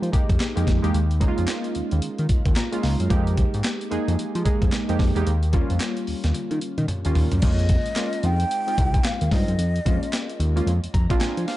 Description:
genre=R&B, new jack swing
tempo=111 BPM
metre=4/4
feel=swing 61% on 16ths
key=unclear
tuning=A4 = 439 Hz
part: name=warm analog keys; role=accompaniment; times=0.0-11.6 s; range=G3 to Bb5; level=-27 LUFS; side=right 1 dB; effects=chorus
part: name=fat analog bass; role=bass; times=0.0-11.5 s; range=C2 to F3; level=-22 LUFS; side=equal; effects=none
part: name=breakbeat sampler-style drum kit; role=drums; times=0.0-11.6 s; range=crash cymbal, handclaps, hi-hat, kick drum, snare drum, toms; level=-23 LUFS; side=equal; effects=none
part: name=breathy mellow shakuhachi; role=melody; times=7.4-10.4 s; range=D5 to G5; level=-28 LUFS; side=equal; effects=tape echo
room=little or no reverb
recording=dark, warm production, nothing above 11.0 kHz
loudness=-20 LUFS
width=side -15 dB against mid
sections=0.0-7.4 A section; 7.4-11.6 B section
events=synth keys fill 2.3-3.1, 10.7-11.6; drum fill 6.3-7.4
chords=0.0 Fm11; 0.9 Eb7sus4; 3.1 Fm11; 5.3 Eb7; 7.4 Eb7sus4/F; 8.2 Fm9; 9.6 Eb7sus4/F; 10.7 Fm6

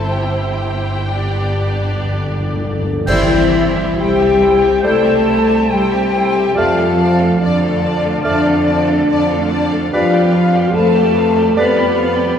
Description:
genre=classical, slow romantic movement for symphony orchestra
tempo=59-74 BPM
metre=4/4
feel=rubato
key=C major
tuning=A4 = 442 Hz
part: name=rich chamber violin section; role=melody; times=0.0-12.4 s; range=D5 to A5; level=-27 LUFS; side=left 3 dB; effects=none
part: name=warm symphonic violin section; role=second line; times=0.0-12.4 s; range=G4 to D5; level=-26 LUFS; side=left 1 dB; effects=none
part: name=rich chamber viola section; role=accompaniment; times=0.0-12.4 s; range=F3 to E4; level=-26 LUFS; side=right 2 dB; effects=none
part: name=rich chamber cello section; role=bass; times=0.0-12.4 s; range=G2 to B3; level=-19 LUFS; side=right 2 dB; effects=none
part: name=warm chamber double bass section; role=bass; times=0.0-12.3 s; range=G1 to F2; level=-21 LUFS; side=right 2 dB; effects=none
part: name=timpani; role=percussion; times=0.0-4.4 s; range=G2 to C3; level=-25 LUFS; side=equal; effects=none
part: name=dark French horn section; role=sustained chords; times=0.1-12.4 s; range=D4 to B4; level=-16 LUFS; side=left 4 dB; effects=none
part: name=flute section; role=second line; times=3.1-12.4 s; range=D5 to B5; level=-22 LUFS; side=equal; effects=none
part: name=mellow clarinet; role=second line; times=3.1-11.9 s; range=B4 to D5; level=-27 LUFS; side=right 1 dB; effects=none
part: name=warm oboe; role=second line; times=3.1-11.9 s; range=D5 to G5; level=-27 LUFS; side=equal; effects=none
part: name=mellow bassoon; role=accompaniment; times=3.1-11.9 s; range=G3 to A3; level=-24 LUFS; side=equal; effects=none
part: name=clash cymbals and concert bass drum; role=percussion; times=3.1-4.8 s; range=none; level=-24 LUFS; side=right 1 dB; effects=none
room=wet church reverb, RT60 2.9 s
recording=recorded in a church or concert hall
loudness=-12 LUFS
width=side -8 dB against mid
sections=0.0-3.1 A section; 3.1-12.4 A section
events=timpani fill 1.1-3.1; band accent 3.1-4.0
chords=0.0 C/G; 1.1 G; 3.1 C; 6.6 Dm/F; 9.9 G7/F

